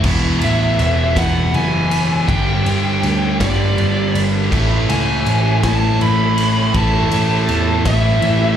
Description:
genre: quiet-loud alternative rock.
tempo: 54 BPM (dotted quarters).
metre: 6/8.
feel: straight.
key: unclear.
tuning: A4 = 441 Hz.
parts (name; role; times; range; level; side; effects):
biting overdriven guitar; riff; 0.0-8.6 s; E2 to A3; -22 LUFS; left 9 dB; none.
biting overdriven guitar; riff; 0.0-8.6 s; E2 to A3; -22 LUFS; right 10 dB; slapback echo.
heavy high-gain guitar; riff; 0.0-8.6 s; G2 to E4; -26 LUFS; right 1 dB; distortion.
picked electric bass; bass; 0.0-8.6 s; E1 to E2; -18 LUFS; equal; none.
raw garage drum kit; drums; 0.0-8.4 s; crash cymbal, kick drum, ride cymbal, snare drum; -21 LUFS; equal; none.
biting lead guitar; melody; 0.4-8.6 s; D5 to B5; -21 LUFS; equal; overdrive, tape echo.
room: little or no reverb.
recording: live gig heard through the venue's PA, club ambience.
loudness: -13 LUFS.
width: side -9 dB against mid.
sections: 0.0-8.6 A section.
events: none.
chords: 0.0 E; 2.3 G; 4.5 A.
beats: | 0.04 1.17 | 2.29 3.40 | 4.52 5.63 | 6.75 7.86.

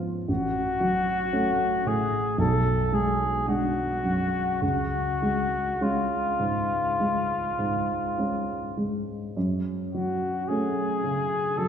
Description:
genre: classical, romantic duo for trumpet and grand piano.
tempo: 50-60 BPM.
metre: 4/4.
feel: rubato.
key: F# minor.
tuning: A4 = 440 Hz.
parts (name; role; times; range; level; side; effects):
dark grand piano; accompaniment; 0.0-11.7 s; A1 to D4; -26 LUFS; right 1 dB; none.
mellow trumpet; melody; 0.3-11.7 s; E#4 to A4; -27 LUFS; left 2 dB; none.
room: wet scoring stage reverb, RT60 1.6 s.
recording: heard from further back in the room.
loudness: -24 LUFS.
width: side -8 dB against mid.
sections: 0.0-11.7 A section.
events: none.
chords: 0.3 F#m/A; 2.4 G#m7b5/B; 4.6 C#; 9.4 F#m.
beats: | 0.30 1.34 2.39 3.48 | 4.62 5.82 7.00 8.18 | 9.36 10.49 11.59.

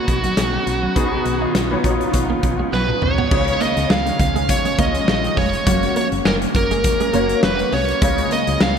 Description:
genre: 1980s-style pop.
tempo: 102 BPM.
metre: 4/4.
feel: swing 55% on 16ths.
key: unclear.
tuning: A4 = 440 Hz.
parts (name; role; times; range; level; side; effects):
bluesy overdriven lead guitar; melody; 0.0-8.8 s; F#4 to E#5; -21 LUFS; right 2 dB; distortion, digital delay.
clear concert grand piano; accompaniment; 0.0-8.8 s; B2 to D#5; -24 LUFS; left 3 dB; ensemble chorus.
granular cloud pad; sustained chords; 0.0-8.8 s; D#3 to C#4; -27 LUFS; left 1 dB; built-in reverb.
twelve-string electric guitar; riff; 0.0-8.7 s; F#3 to D#4; -26 LUFS; right 5 dB; analog chorus.
solid FM bass; bass; 0.1-8.8 s; E#1 to C#2; -25 LUFS; equal; none.
big rock drum kit; drums; 0.1-8.8 s; crash cymbal, hi-hat, kick drum, snare drum, tambourine, toms; -21 LUFS; left 1 dB; gated reverb.
room: moderate lush hall reverb, RT60 2.7 s.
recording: bright 1980s-style digital production.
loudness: -16 LUFS.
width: side -7 dB against mid.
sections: 0.0-3.3 A section; 3.3-8.8 B section.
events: drum fill 2.7-3.3.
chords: 0.0 Badd9; 3.3 C#; 5.7 F#; 8.0 C#.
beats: 0.37 | 0.96 1.55 2.14 2.73 | 3.31 3.90 4.49 5.08 | 5.67 6.25 6.84 7.43 | 8.02 8.61.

